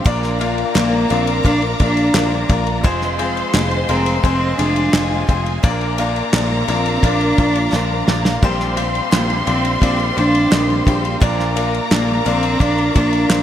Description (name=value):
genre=piano-driven pop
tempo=86 BPM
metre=4/4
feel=straight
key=Bb mixolydian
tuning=A4 = 439 Hz
part: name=clear baby grand piano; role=accompaniment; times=0.0-13.4 s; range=Bb2 to F5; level=-22 LUFS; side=left 4 dB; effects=wide subtle chorus
part: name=warm studio string section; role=sustained chords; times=0.0-13.4 s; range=G4 to D6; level=-28 LUFS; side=left 3 dB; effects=none
part: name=picked steel-string acoustic guitar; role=riff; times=0.0-13.4 s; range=F2 to G4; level=-27 LUFS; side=right 7 dB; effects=lush chorus
part: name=warm symphonic violin section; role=second line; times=0.1-13.4 s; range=Ab4 to C6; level=-25 LUFS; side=equal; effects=none
part: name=picked electric bass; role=bass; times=0.1-13.4 s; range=F1 to Bb1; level=-21 LUFS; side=equal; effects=none
part: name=damped 70s drum kit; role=drums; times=0.1-13.4 s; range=handclaps, kick drum, ride cymbal, snare drum, splash cymbal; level=-20 LUFS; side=equal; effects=gated reverb
part: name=dark cello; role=melody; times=0.8-13.4 s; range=Bb3 to D4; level=-20 LUFS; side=right 1 dB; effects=none
room=light reverb, studio reverb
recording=bright 1980s-style digital production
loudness=-14 LUFS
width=side -10 dB against mid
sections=0.0-13.4 A section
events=drum fill 7.7-8.4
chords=0.1 Bb; 2.8 Fm; 5.6 Bb; 8.4 Csus4/Bb; 11.2 Bb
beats=| 0.06 0.75 1.45 2.15 | 2.85 3.54 4.24 4.94 | 5.63 6.33 7.03 7.73 | 8.42 9.12 9.82 10.52 | 11.21 11.91 12.61 13.31